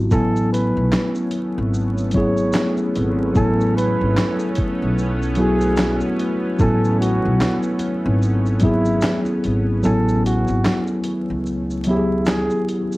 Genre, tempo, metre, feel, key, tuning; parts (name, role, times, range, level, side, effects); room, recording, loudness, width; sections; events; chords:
lo-fi hip hop; 74 BPM; 4/4; swing 58% on 16ths; A major; A4 = 441 Hz
tine electric piano; accompaniment; 0.0-13.0 s; F#3 to G#5; -20 LUFS; left 1 dB; medium stereo tremolo, cassette tape, low-pass filter
upright bass; bass; 0.0-12.5 s; G#1 to C#2; -21 LUFS; equal
breathy flugelhorn; melody; 0.1-12.6 s; E4 to C#5; -24 LUFS; right 1 dB; low-pass filter, cassette tape
lush unison pad; sustained chords; 0.1-13.0 s; A3 to C#4; -29 LUFS; right 1 dB; chorus, low-pass filter
dusty soul sampler-style drum kit; drums; 0.1-13.0 s; handclaps, hi-hat, kick drum, shaker, snare drum; -23 LUFS; equal; vintage 12-bit sampler grit, cassette tape
light reverb; home recording on cassette, vinyl crackle; -17 LUFS; side -20 dB against mid
0.0-13.0 A section
kick muted 9.8-13.0
0.1 Amaj9